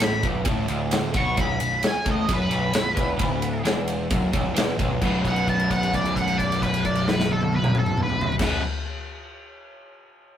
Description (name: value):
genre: blues rock power trio and southern rock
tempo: 132 BPM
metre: 4/4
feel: straight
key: unclear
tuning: A4 = 436 Hz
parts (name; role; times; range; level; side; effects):
- octave-fuzz lead guitar; melody; 0.0-8.6 s; A4 to C#6; -26 LUFS; equal; wah, distortion
- crunchy overdriven guitar; riff; 0.0-8.6 s; B1 to B2; -25 LUFS; equal; none
- fuzz picked electric bass; bass; 0.0-8.6 s; B0 to B1; -31 LUFS; equal; overdrive
- big rock drum kit; drums; 0.0-8.5 s; crash cymbal, kick drum, ride cymbal, snare drum, toms; -25 LUFS; equal; none
room: moderate stone room reverb, RT60 1.1 s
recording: rough rehearsal-room recording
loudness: -20 LUFS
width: side -10 dB against mid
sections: 0.0-5.0 A section; 5.0-8.7 B section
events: held note 5.0-8.4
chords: 0.0 B5